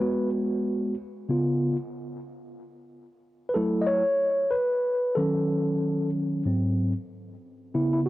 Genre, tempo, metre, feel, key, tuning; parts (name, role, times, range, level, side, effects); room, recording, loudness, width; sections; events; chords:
hip hop; 93 BPM; 4/4; swing 61% on 16ths; A4 = 439 Hz
mellow tine electric piano; solo; 0.0-8.1 s; G#2 to D#5; -24 LUFS; equal; medium stereo tremolo, cassette tape, analog delay
light reverb; home recording on cassette; -24 LUFS; side -17 dB against mid
0.0-7.8 A section
tine electric piano solo 0.0-7.8
0.0 G#m7; 1.3 C#7; 2.6 F#m7; 5.2 D#m7b5; 6.5 G#7